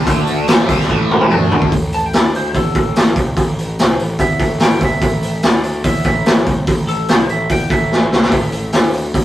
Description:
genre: blues rock power trio and southern rock.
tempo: 146 BPM.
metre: 4/4.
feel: straight.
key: unclear.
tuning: A4 = 440 Hz.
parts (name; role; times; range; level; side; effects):
cranked stack guitar; riff; 0.0-1.7 s; A2 to D4; -17 LUFS; equal; overdrive, phaser.
fuzz picked electric bass; bass; 0.0-9.2 s; A1 to E2; -22 LUFS; equal; overdrive.
raw garage drum kit; drums; 0.1-9.2 s; hi-hat, kick drum, snare drum, toms; -14 LUFS; equal; none.
lightly driven lead guitar; melody; 1.9-8.9 s; A4 to A5; -21 LUFS; right 1 dB; none.
room: little or no reverb.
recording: rough rehearsal-room recording.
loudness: -12 LUFS.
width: side -13 dB against mid.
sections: 0.0-1.7 A section; 1.7-9.2 B section.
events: drum fill 0.9-1.7, 7.9-8.3; lead electric guitar solo 1.7-9.2.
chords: 0.1 D5; 0.5 A5; 1.3 D5; 1.7 N.C.; 2.1 Cadd9/D; 2.5 A5; 5.4 N.C.; 5.8 A5; 8.7 Dsus2.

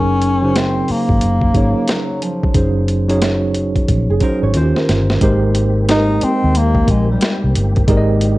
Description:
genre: R&B, neo-soul.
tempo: 90 BPM.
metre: 4/4.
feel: swing 63% on 16ths.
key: Ab major.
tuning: A4 = 439 Hz.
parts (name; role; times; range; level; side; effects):
warm bass clarinet; melody; 0.0-7.5 s; F3 to Eb4; -18 LUFS; left 1 dB; none.
mellow tine electric piano; accompaniment; 0.0-8.4 s; Db3 to Eb5; -18 LUFS; right 2 dB; medium stereo tremolo.
vintage muted fingered electric bass; bass; 0.0-8.4 s; Gb1 to Eb2; -17 LUFS; equal; none.
boom bap sampler-style drum kit; drums; 0.2-8.4 s; hi-hat, kick drum, snare drum; -18 LUFS; equal; none.
nylon-string guitar; second line; 4.1-5.2 s; Ab4 to Db5; -24 LUFS; right 5 dB; none.
tonewheel organ; sustained chords; 5.2-8.4 s; Bb3 to G4; -27 LUFS; left 1 dB; slow rotary speaker, chorus vibrato.
room: light reverb.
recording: worn, warbling old tape, cassette tape, warbly pitch drift.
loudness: -13 LUFS.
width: side -18 dB against mid.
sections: 0.0-5.2 A section; 5.2-8.4 B section.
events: drum fill 4.5-5.2.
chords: 0.0 Gb69; 4.5 Eb13; 5.2 Abmaj9.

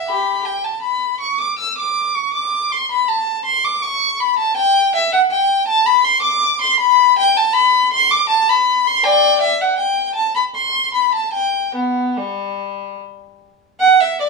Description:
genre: classical, baroque-style suite movement for unaccompanied violin.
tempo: 72-83 BPM.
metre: 3/4.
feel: rubato.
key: G major from 4.6 s.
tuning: A4 = 443 Hz.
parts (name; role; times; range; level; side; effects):
rich violin; solo; 0.0-14.3 s; G3 to E6; -14 LUFS; left 1 dB; none.
room: moderate stone room reverb, RT60 1.1 s.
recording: studio ambience.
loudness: -14 LUFS.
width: side -2 dB against mid.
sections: 0.0-13.8 A section.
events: none.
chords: none.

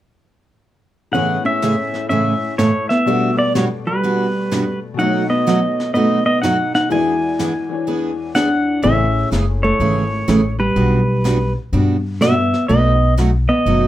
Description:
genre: country, western swing.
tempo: 125 BPM.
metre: 4/4.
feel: swing 66% on 8ths.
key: A major.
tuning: A4 = 438 Hz.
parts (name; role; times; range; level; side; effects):
pedal steel guitar; melody; 1.1-13.9 s; B4 to G#5; -20 LUFS; equal; none.
hollow-body jazz guitar; second line; 1.1-13.9 s; G3 to E4; -20 LUFS; equal; none.
picked steel-string acoustic guitar; accompaniment; 1.1-13.9 s; A2 to G#4; -19 LUFS; right 3 dB; none.
tack piano; accompaniment; 1.1-10.2 s; E2 to D5; -25 LUFS; left 6 dB; none.
vintage brush drum kit; drums; 1.1-13.9 s; brushed snare drum, hi-hat, snare drum; -28 LUFS; left 2 dB; none.
upright bass; bass; 8.8-13.9 s; F#1 to G2; -18 LUFS; left 1 dB; none.
room: moderate club ambience, RT60 0.5 s.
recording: none.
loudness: -14 LUFS.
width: side -13 dB against mid.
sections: 1.1-8.8 A section; 8.8-13.9 B section.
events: none.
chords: 1.1 Amaj7; 3.1 Gmaj7/B; 5.0 B7; 6.9 E7; 8.8 Amaj7; 10.8 Gmaj7/B; 12.7 B7.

